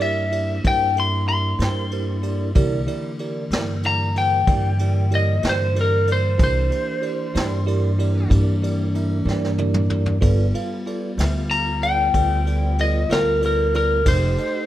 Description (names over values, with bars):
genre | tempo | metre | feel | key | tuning
slow blues | 63 BPM (dotted quarters) | 12/8 | straight | C mixolydian | A4 = 435 Hz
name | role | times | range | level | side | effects
lightly driven lead guitar | melody | 0.0-14.7 s | Bb4 to C6 | -22 LUFS | left 2 dB | none
bell-like tine electric piano | accompaniment | 0.0-14.6 s | E4 to F5 | -30 LUFS | right 6 dB | phaser
mellow tonewheel organ | sustained chords | 0.0-14.7 s | D3 to G4 | -28 LUFS | equal | slow rotary speaker
upright bass | bass | 0.0-14.4 s | F1 to G2 | -21 LUFS | equal | none
vintage brush drum kit | drums | 0.0-14.5 s | kick drum, ride cymbal, snare drum, toms | -25 LUFS | equal | none
room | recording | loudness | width
small room ambience | rough home demo mix | -18 LUFS | side -13 dB against mid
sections
0.0-14.7 A section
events
lead electric guitar solo 0.0-14.7; drum fill 9.3-10.2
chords
0.0 C9; 10.2 G9; 14.1 F9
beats
0.64 1.60 | 2.56 3.52 4.47 5.43 | 6.39 7.35 8.31 9.26 | 10.22 11.18 12.14 13.10 | 14.06